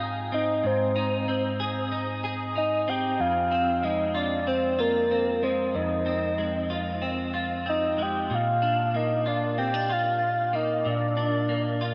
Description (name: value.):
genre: dream pop.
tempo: 94 BPM.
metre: 4/4.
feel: straight.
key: unclear.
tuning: A4 = 440 Hz.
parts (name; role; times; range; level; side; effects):
clean electric guitar; arpeggios; 0.0-11.9 s; F2 to Ab4; -30 LUFS; equal; ensemble chorus, tape echo.
soft octave-layered synth lead; melody; 0.3-11.9 s; Bb4 to G5; -28 LUFS; equal; chorus, tape echo.
room: wet huge ambient reverb, RT60 5.0 s.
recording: none.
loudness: -26 LUFS.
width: mono.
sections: 0.0-11.9 A section.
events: none.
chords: 0.0 Ab; 3.2 Fm7; 8.3 Bb.